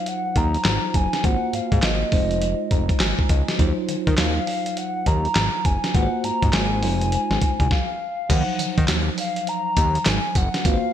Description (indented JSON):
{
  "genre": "R&B, new jack swing",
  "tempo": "102 BPM",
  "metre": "4/4",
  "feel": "swing 63% on 16ths",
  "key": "Eb dorian",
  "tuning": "A4 = 440 Hz",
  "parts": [
    { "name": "hollow clarinet-like synth lead", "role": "melody", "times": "0.0-10.9 s", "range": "Eb5 to Bb5", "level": "-26 LUFS", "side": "equal", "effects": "chorus" },
    { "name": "bell-like tine electric piano", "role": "accompaniment", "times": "0.0-10.9 s", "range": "F3 to Bb5", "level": "-28 LUFS", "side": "equal", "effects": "fast stereo tremolo" },
    { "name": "dusty soul sampler-style drum kit", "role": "drums", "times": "0.1-10.8 s", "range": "crash cymbal, handclaps, hi-hat, kick drum, snare drum, tambourine", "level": "-22 LUFS", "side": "equal", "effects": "vintage 12-bit sampler grit, gated reverb" },
    { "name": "fat analog bass", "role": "bass", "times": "0.4-10.8 s", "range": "F1 to Eb3", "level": "-23 LUFS", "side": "equal", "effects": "none" }
  ],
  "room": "light reverb",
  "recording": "bright 1980s-style digital production, faint mains hum",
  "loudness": "-19 LUFS",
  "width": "side -10 dB against mid",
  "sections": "0.0-8.3 A section; 8.3-10.9 B section",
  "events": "tine electric piano fill 2.4-3.6; stop 7.7-8.3",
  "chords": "0.0 Ebm69; 1.2 Ab13; 2.1 Fm7; 3.6 Ebm69; 5.9 Ab13; 6.8 Fm7; 8.3 Ebm69"
}